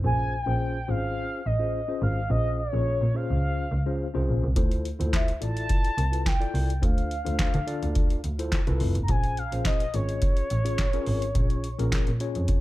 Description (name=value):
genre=early-eighties boogie funk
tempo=106 BPM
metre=4/4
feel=straight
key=unclear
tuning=A4 = 440 Hz
part: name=mellow tine electric piano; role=accompaniment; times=0.0-12.6 s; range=Db4 to D5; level=-33 LUFS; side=left 3 dB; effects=medium stereo tremolo
part: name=clear double bass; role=bass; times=0.0-12.5 s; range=F1 to D3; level=-27 LUFS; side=equal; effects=none
part: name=mellow horn-like synth lead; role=melody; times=0.1-12.6 s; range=Db5 to Bb5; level=-31 LUFS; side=equal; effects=chorus, phaser
part: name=booming analog drum machine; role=drums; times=4.6-12.6 s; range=handclaps, hi-hat, kick drum, snare drum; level=-25 LUFS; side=equal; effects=none
room=digital ambience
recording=dark, warm production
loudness=-24 LUFS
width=side -16 dB against mid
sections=0.0-12.6 A section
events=none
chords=0.0 Bbm9; 4.6 Dm9; 9.1 Bbm9